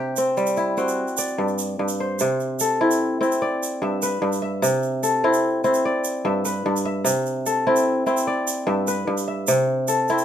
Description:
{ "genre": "west african traditional, West African string and xylophone music", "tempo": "99 BPM (dotted quarters)", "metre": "12/8", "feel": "straight", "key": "C lydian", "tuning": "A4 = 440 Hz", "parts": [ { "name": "kora", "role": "arpeggios", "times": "0.0-10.2 s", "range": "G2 to E5", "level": "-20 LUFS", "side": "equal", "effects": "none" }, { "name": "tube shaker", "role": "percussion", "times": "0.2-10.2 s", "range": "none", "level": "-29 LUFS", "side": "right 5 dB", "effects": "none" } ], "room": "moderate studio reverb, RT60 0.6 s", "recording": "minimal, uncompressed stereo recording", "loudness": "-20 LUFS", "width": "side -9 dB against mid", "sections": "0.0-2.2 A section; 2.2-10.2 B section", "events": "none", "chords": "0.0 C; 1.0 G5; 2.2 C; 3.4 G; 4.6 C; 5.8 G; 7.1 C; 8.3 G; 9.5 C" }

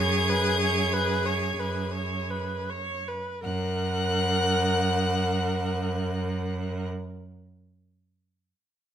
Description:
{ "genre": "classical, slow romantic movement for string quartet", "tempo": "38-49 BPM", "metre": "3/4", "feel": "rubato", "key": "F# major", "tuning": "A4 = 440 Hz", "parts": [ { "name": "clear violin", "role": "melody", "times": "0.0-6.9 s", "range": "F#6 to G#6", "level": "-32 LUFS", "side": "left 3 dB", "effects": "none" }, { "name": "rich violin", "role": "second line", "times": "0.0-6.8 s", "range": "G#4 to F#5", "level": "-31 LUFS", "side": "left 2 dB", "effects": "none" }, { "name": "clear viola", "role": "accompaniment", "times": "0.0-6.9 s", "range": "A#4 to C#5", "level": "-30 LUFS", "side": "equal", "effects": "none" }, { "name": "clear cello", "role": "bass", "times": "0.0-6.9 s", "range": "F#2", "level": "-28 LUFS", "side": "right 2 dB", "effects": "none" } ], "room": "light reverb", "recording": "none", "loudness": "-24 LUFS", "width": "side -9 dB against mid", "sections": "0.0-3.4 A section; 3.4-7.6 B section", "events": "slowing down 0.0-3.4", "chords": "0.0 C#5/F#; 3.4 F#" }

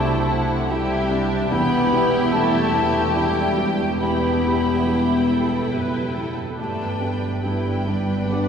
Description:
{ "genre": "cinematic, emotional film score for orchestra", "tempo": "67-74 BPM", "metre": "3/4", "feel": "rubato", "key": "unclear", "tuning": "A4 = 440 Hz", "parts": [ { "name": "warm studio violin section", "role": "melody", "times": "0.0-8.5 s", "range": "E5 to G5", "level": "-32 LUFS", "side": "left 3 dB", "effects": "none" }, { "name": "flute section", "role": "second line", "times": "0.0-8.5 s", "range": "G5 to D6", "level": "-27 LUFS", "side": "equal", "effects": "none" }, { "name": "warm studio violin section", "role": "second line", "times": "0.0-8.5 s", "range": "E4 to B4", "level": "-29 LUFS", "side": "left 2 dB", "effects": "none" }, { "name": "felt-muted upright piano", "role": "accompaniment", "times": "0.0-8.5 s", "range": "C2 to G4", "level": "-27 LUFS", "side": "equal", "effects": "none" }, { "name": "rich studio viola section", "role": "accompaniment", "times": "0.0-8.5 s", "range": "D4 to B4", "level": "-30 LUFS", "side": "right 1 dB", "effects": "none" }, { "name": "mellow French horn section", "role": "sustained chords", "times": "0.0-8.5 s", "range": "G3 to D4", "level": "-23 LUFS", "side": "left 2 dB", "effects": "none" }, { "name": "rich studio double bass section", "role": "bass", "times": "0.0-8.5 s", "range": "E1 to C2", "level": "-29 LUFS", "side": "right 3 dB", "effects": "none" }, { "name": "warm studio cello section", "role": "bass", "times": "0.0-8.5 s", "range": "E2 to C3", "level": "-28 LUFS", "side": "right 2 dB", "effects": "none" } ], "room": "wet cathedral reverb, RT60 6.1 s", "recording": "recorded in a church or concert hall", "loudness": "-18 LUFS", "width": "side -7 dB against mid", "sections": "0.0-8.5 A section", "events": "none", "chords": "0.0 C; 1.5 Em; 6.6 G" }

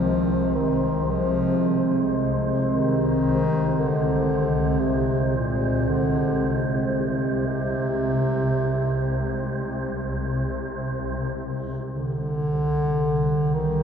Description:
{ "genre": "dark ambient drone", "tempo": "free time", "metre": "none", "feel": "none", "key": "unclear", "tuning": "A4 = 445 Hz", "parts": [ { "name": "warm bass clarinet", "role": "melody", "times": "0.0-13.8 s", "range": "Bb2 to F3", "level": "-24 LUFS", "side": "left 1 dB", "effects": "ping-pong delay" }, { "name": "deep dark ambient pad", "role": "sustained chords", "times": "0.0-11.4 s", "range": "C3 to Eb5", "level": "-26 LUFS", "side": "right 2 dB", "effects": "chorus, built-in reverb" }, { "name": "swarming drone", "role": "drone", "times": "0.0-13.8 s", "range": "C2 to C3", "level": "-28 LUFS", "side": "equal", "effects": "built-in reverb" }, { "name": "wind-like tuned noise texture", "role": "texture", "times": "0.0-13.8 s", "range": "C5", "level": "-35 LUFS", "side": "right 2 dB", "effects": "built-in reverb" } ], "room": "wet cathedral reverb, RT60 5.3 s", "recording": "cassette tape", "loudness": "-21 LUFS", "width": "side -7 dB against mid", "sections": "0.0-11.4 A section; 11.4-13.8 B section", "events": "filter sweep on synth drone 11.4-13.8", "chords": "0.0 Ab/C; 11.4 N.C." }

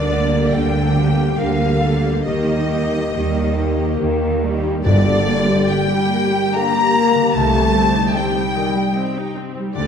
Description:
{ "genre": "cinematic, emotional film score for orchestra", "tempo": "68-75 BPM", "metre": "3/4", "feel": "rubato", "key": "G minor", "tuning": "A4 = 440 Hz", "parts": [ { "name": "rich studio violin section", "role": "melody", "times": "0.0-9.9 s", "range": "D5 to Bb5", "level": "-30 LUFS", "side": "left 3 dB", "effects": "none" }, { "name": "hollow concert flute", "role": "second line", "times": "0.0-9.9 s", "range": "D5 to Bb5", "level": "-25 LUFS", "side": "left 1 dB", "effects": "none" }, { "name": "rich studio violin section", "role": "second line", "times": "0.0-9.9 s", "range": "D5 to Bb5", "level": "-24 LUFS", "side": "left 3 dB", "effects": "none" }, { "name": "warm clarinet", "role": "second line", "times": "0.0-4.4 s", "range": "G4 to Bb4", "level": "-29 LUFS", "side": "left 1 dB", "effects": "none" }, { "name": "mellow French horn section", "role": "sustained chords", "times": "0.0-9.9 s", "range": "D3 to Bb3", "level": "-22 LUFS", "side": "left 2 dB", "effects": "none" }, { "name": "concert harp", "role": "arpeggios", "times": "0.0-9.9 s", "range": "G2 to G5", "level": "-25 LUFS", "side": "left 7 dB", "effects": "none" }, { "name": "rich studio cello section", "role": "bass", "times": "0.0-9.9 s", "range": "C2 to Eb3", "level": "-24 LUFS", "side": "right 3 dB", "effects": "none" }, { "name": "rich studio double bass section", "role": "bass", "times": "0.0-9.9 s", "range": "G1 to Eb2", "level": "-22 LUFS", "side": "right 3 dB", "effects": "none" }, { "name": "rich symphonic viola section", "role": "accompaniment", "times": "0.1-9.9 s", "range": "D3 to G4", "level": "-24 LUFS", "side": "right 1 dB", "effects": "none" }, { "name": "timpani", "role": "percussion", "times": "4.9-6.1 s", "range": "G2", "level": "-22 LUFS", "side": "right 1 dB", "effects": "none" } ], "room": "wet scoring stage reverb, RT60 1.7 s", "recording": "dark, warm production, lossy compression artefacts", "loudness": "-15 LUFS", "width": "side -7 dB against mid", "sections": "0.0-4.8 A section; 4.8-9.9 B section", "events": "none", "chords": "0.0 Gm/D; 2.3 Eb; 4.8 Gm; 7.3 Cm" }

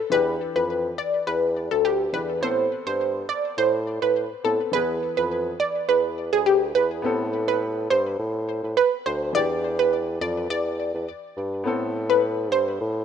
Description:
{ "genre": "dancehall", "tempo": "104 BPM", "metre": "4/4", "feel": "straight", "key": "A minor", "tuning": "A4 = 441 Hz", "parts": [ { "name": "clear concert grand piano", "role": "accompaniment", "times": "0.0-13.0 s", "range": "E3 to A4", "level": "-33 LUFS", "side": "left 3 dB", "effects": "none" }, { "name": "analog pluck", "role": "melody", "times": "0.1-12.6 s", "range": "G4 to D5", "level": "-22 LUFS", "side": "right 1 dB", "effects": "chorus, ping-pong delay" }, { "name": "dark bassoon", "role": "bass", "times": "0.1-13.0 s", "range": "D2 to A2", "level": "-27 LUFS", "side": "equal", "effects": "none" } ], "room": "light reverb, small room ambience", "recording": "rough home demo mix", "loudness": "-21 LUFS", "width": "side -8 dB against mid", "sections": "0.0-7.0 A section; 7.0-13.0 B section", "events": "none", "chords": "0.1 Em7; 2.4 Amadd9; 4.7 E; 7.0 Amadd9; 9.3 Em7; 11.7 Amadd9" }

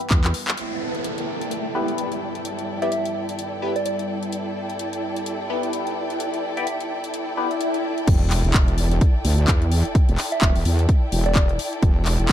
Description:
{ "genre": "bass house", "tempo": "128 BPM", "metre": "4/4", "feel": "swing 58% on 16ths", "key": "E minor", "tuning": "A4 = 440 Hz", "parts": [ { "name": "dark analog pad", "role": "sustained chords", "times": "0.0-8.0 s", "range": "G3 to G5", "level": "-35 LUFS", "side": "right 2 dB", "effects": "chorus, sidechain pumping" }, { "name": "house drum kit", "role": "drums", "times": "0.0-12.3 s", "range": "crash cymbal, handclaps, hi-hat", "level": "-27 LUFS", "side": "left 1 dB", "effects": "overdrive" }, { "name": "wobble bass", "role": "bass", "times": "0.1-0.3, 8.1-12.3 s", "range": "E1 to E2", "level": "-20 LUFS", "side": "equal", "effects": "chorus, tube saturation, sidechain pumping" }, { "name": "electronic kick drum", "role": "drums", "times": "0.1-0.2, 8.1-12.3 s", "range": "none", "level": "-17 LUFS", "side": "equal", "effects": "overdrive" }, { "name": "downlifter, swell and sub drop", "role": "sound effects", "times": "0.6-9.9 s", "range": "none", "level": "-29 LUFS", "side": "equal", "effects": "none" }, { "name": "warm studio string section", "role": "texture", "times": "0.6-12.3 s", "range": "E4 to G5", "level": "-28 LUFS", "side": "equal", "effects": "sidechain pumping" }, { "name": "band-passed chord stab", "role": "stabs", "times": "1.7-7.5 s", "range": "B3 to D5", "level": "-29 LUFS", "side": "left 3 dB", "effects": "phaser, analog chorus, cassette tape, sidechain pumping, digital delay" }, { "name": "soft synth bell", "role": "melody", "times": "2.8-6.8, 10.3-11.4 s", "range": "D5 to E5", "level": "-29 LUFS", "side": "right 2 dB", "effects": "chorus, phaser, digital delay" } ], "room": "light reverb", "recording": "dark, warm production", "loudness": "-20 LUFS", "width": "side -11 dB against mid", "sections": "0.6-8.1 A section; 8.1-12.3 B section", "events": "drum fill 0.2-0.6; filter sweep on analog synth pad 0.6-8.1; swell 7.3-8.1; drop 8.1-12.3; impact 8.1-9.9", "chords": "0.0 Em" }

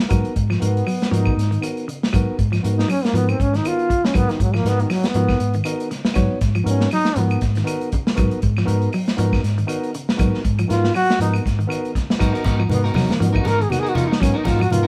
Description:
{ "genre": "afrobeat", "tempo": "119 BPM", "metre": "4/4", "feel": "swing 56% on 16ths", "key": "G# dorian", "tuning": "A4 = 440 Hz", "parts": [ { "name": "semi-hollow electric guitar", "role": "arpeggios", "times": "0.0-14.8 s", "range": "C#3 to F#3", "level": "-28 LUFS", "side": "equal", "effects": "none" }, { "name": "barky tine electric piano", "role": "accompaniment", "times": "0.1-14.9 s", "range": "B3 to C#5", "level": "-30 LUFS", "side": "equal", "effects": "overdrive" }, { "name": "fingered electric bass", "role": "bass", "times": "0.1-14.9 s", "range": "G#2", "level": "-23 LUFS", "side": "equal", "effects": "none" }, { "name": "crunchy breakbeat drum kit", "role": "drums", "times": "0.1-14.8 s", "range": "hi-hat, kick drum, snare drum", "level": "-25 LUFS", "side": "equal", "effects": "none" }, { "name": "claves", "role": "percussion", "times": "0.1-14.7 s", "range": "none", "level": "-37 LUFS", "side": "equal", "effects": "none" }, { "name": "clear trombone", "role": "melody", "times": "0.6-7.4, 10.7-14.9 s", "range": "D#3 to A#4", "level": "-24 LUFS", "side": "equal", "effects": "none" }, { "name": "electric guitar at the edge of break-up", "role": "stabs", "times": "12.2-14.9 s", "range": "B3 to A#4", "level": "-29 LUFS", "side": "equal", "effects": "tape echo" }, { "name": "congas", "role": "percussion", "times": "12.4-14.8 s", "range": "none", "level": "-27 LUFS", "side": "equal", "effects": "none" } ], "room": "light reverb", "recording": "band playing live in one room", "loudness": "-19 LUFS", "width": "mono", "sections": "0.0-14.9 A section", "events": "trombone solo 0.0-14.9", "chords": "0.0 G#m9" }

